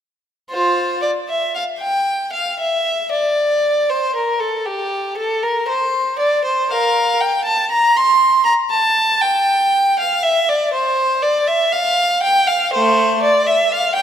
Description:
classical, baroque-style suite movement for unaccompanied violin; 59 BPM; 3/4; rubato; F major; A4 = 443 Hz
rich violin; solo; 0.5-14.0 s; A3 to C6; -14 LUFS; equal
wet concert hall reverb, RT60 2.0 s; -14 LUFS; side -9 dB against mid
0.5-14.0 A section

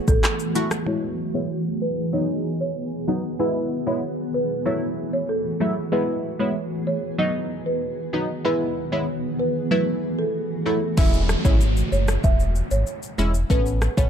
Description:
dancehall; 95 BPM; 4/4; straight; E major; A4 = 440 Hz
punchy chord stab; accompaniment; 0.0-14.1 s; F#3 to F#4; -26 LUFS; equal; chorus, low-pass filter
granular cloud pad; sustained chords; 0.0-11.0 s; D#3 to G#4; -27 LUFS; equal; built-in reverb, sidechain pumping, low-pass filter
folk marimba with medium mallets; melody; 0.1-14.1 s; A4 to E5; -27 LUFS; right 2 dB; low-pass filter, ping-pong delay
sub bass with octave; bass; 0.1-0.2, 11.0-14.1 s; E1 to A1; -22 LUFS; equal
afro-pop drum kit; drums; 0.1-0.9, 11.0-14.1 s; crash cymbal, handclaps, hi-hat, kick drum, rim click, shaker; -21 LUFS; equal
downlifter; sound effects; 11.0-14.1 s; -32 LUFS; right 1 dB
light reverb, digital ambience; dark, warm production; -21 LUFS; side -8 dB against mid
0.9-11.0 A section; 11.0-14.1 B section
filter sweep 0.9-11.0
0.0 F#m7; 0.9 E; 2.1 B; 3.4 E; 4.7 F#m7; 5.9 E; 7.2 B; 8.4 E; 9.7 F#m7; 11.0 E6; 13.5 Aadd9

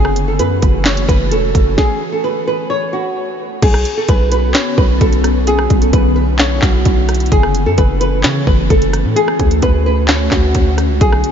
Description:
hip hop, trap; 130 BPM; 4/4; half-time; A4 = 441 Hz
flamenco guitar; melody; 0.0-11.3 s; F#4 to C#5; -17 LUFS; equal; lush chorus, low-pass filter, analog delay
ethereal airy pad; sustained chords; 0.0-11.3 s; D3 to F#4; -20 LUFS; left 1 dB; ensemble chorus, built-in reverb
hard-hitting 808-style bass; bass; 0.0-11.2 s; E1 to C#3; -16 LUFS; equal
trap drum kit; drums; 0.0-11.3 s; crash cymbal, handclaps, hi-hat, kick drum, rim click, snare drum; -15 LUFS; equal
light reverb; nothing above 7.5 kHz; -11 LUFS; side -8 dB against mid
0.0-3.6 A section; 3.6-11.3 B section
stop 1.8-3.6
0.0 F#m7; 1.8 N.C.; 3.6 Bmadd9; 7.3 F#m7; 9.2 Dmaj7

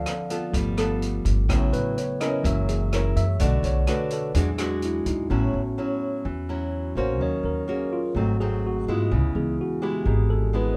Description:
bossa nova; 126 BPM; 4/4; straight; A major; A4 = 440 Hz
nylon-string guitar; accompaniment; 0.0-10.8 s; G#2 to Bb4; -32 LUFS; equal
tine electric piano; accompaniment; 0.0-10.8 s; C#3 to F5; -30 LUFS; equal
upright bass; bass; 0.0-10.7 s; F#1 to G#2; -27 LUFS; equal
open jazz drum kit; drums; 0.1-5.2 s; hi-hat, kick drum, rim click; -33 LUFS; equal
little or no reverb; -25 LUFS; mono
0.0-5.3 A section; 5.3-10.8 A section
tine electric piano solo 0.0-10.8
0.0 Dm7; 0.5 G9; 1.5 A6; 2.4 F#7; 3.4 Bm7; 4.3 E9; 5.3 A6; 7.2 D#m7; 8.2 G#7b9; 9.1 C#m7

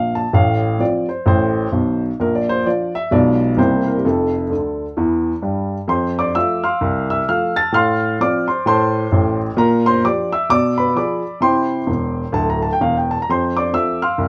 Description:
jazz, stride piano; 130 BPM; 4/4; swing 61% on 8ths; F major; A4 = 440 Hz
warm upright piano; solo; 0.0-14.3 s; D1 to A6; -18 LUFS; equal
moderate club reverb, RT60 0.6 s; -18 LUFS; mono
0.0-5.9 A section; 5.9-14.3 A section
upright piano fill 4.5-5.9, 11.9-13.3
0.3 F/A; 2.2 Bb; 3.1 Bdim7; 3.6 C7; 4.0 F; 7.7 F/A; 9.6 Bb6; 10.5 Bdim7; 11.4 C; 13.3 F

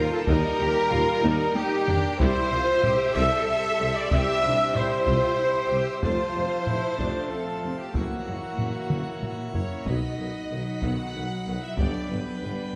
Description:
cinematic, epic orchestral film score; 94 BPM; 3/4; straight; A4 = 441 Hz
warm symphonic violin section; melody; 0.0-12.8 s; F#4 to F#5; -37 LUFS; equal
mellow concert flute; second line; 0.0-9.5 s; F#5 to E6; -35 LUFS; equal
warm symphonic violin section; second line; 0.0-12.8 s; F#4 to F#5; -37 LUFS; equal
warm symphonic viola section; accompaniment; 0.0-12.8 s; D3 to E5; -38 LUFS; equal
mellow French horn section; sustained chords; 0.0-12.8 s; B3 to E5; -33 LUFS; equal
mellow trombone section; sustained chords; 0.0-9.5 s; C3 to A#3; -39 LUFS; equal
pipe organ, plenum; sustained chords; 0.0-12.8 s; F3 to B5; -38 LUFS; equal
mellow trumpet section; stabs; 0.0-9.5 s; F#4 to E5; -34 LUFS; equal
warm studio cello section; bass; 0.0-12.7 s; D#3 to A4; -35 LUFS; equal
warm symphonic double bass section; bass; 0.0-12.5 s; B1 to G2; -35 LUFS; equal
warm tuba; bass; 0.0-12.5 s; F1 to Eb2; -36 LUFS; equal
taiko ensemble; drums; 0.3-12.8 s; -32 LUFS; equal
wet concert hall reverb, RT60 2.2 s; -25 LUFS; mono
0.0-9.9 A section; 9.9-12.8 B section
drum fill 1.2-2.2, 8.9-9.9
0.0 Eb; 2.2 C; 6.0 F; 7.9 F#7; 9.9 B; 11.8 G

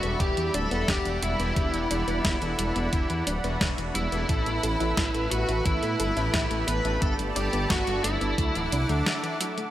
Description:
synthwave; 88 BPM; 4/4; straight; E minor; A4 = 438 Hz
bluesy overdriven lead guitar; melody; 0.0-9.4 s; E4 to B4; -31 LUFS; equal; distortion, digital delay
airy dreamy lead; second line; 0.0-9.4 s; E4 to B4; -35 LUFS; equal; chorus, vintage 12-bit sampler grit, digital delay
brassy analog pad; sustained chords; 0.0-9.7 s; G3 to D6; -33 LUFS; equal; chorus, sidechain pumping
soft round pluck; arpeggios; 0.0-9.6 s; D3 to A4; -36 LUFS; left 2 dB; chorus, digital delay
analog synth brass; stabs; 0.0-9.6 s; G2 to F#5; -36 LUFS; right 1 dB; chorus, digital delay
dark detuned saw bass; bass; 0.0-9.0 s; D1 to A2; -29 LUFS; equal; sidechain pumping
clean 12-bit digital drum machine; drums; 0.0-9.7 s; hi-hat, snare drum; -31 LUFS; equal
electronic kick drum; drums; 0.2-8.5 s; -28 LUFS; equal
moderate plate reverb, RT60 3.3 s; bright 1980s-style digital production; -24 LUFS; side -13 dB against mid
0.0-9.7 A section
break 9.1-9.7
0.0 Em7; 4.3 Asus2; 7.0 Gadd9; 8.4 Dadd9

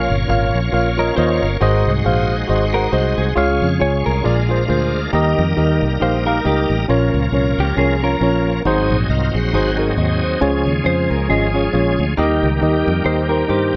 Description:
uptempo gospel; 136 BPM; 4/4; swing 57% on 8ths; Ab major; A4 = 440 Hz
mellow tine electric piano; accompaniment; 0.0-13.8 s; Ab2 to Ab5; -20 LUFS; equal
bright tonewheel organ; sustained chords; 0.0-13.8 s; Eb3 to Db5; -25 LUFS; equal; slow rotary speaker, chorus vibrato
fingered electric bass; bass; 0.0-13.7 s; G1 to G2; -22 LUFS; equal
clean electric guitar; second line; 1.0-13.8 s; G4 to Db5; -26 LUFS; equal
light reverb; -17 LUFS; mono
0.0-13.8 A section
0.0 Bbm; 1.6 Ab7; 3.4 Db; 4.3 Bb7; 5.1 Eb; 6.9 Bbm; 8.7 Ab7; 10.4 Db; 12.2 Eb

